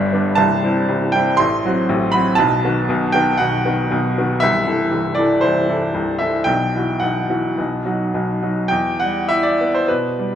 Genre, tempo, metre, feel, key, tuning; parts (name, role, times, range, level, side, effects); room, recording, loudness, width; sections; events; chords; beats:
classical, romantic character piece for solo piano; 98-126 BPM; 4/4; rubato; E minor; A4 = 442 Hz
bright upright piano; solo; 0.0-10.3 s; C1 to C6; -16 LUFS; equal
wet recital hall reverb, RT60 1.8 s; -16 LUFS; side -9 dB against mid
0.0-8.7 A section; 8.7-10.3 B section
0.4 C; 1.4 F#dim/A; 2.4 B; 4.4 Am/C; 6.5 Bsus4; 7.6 B; 8.7 Em
| 0.38 0.88 1.40 1.89 | 2.38 2.89 3.40 3.92 | 4.43 4.93 5.43 5.95 | 6.49 7.04 7.58 8.13 | 8.70 9.30 9.88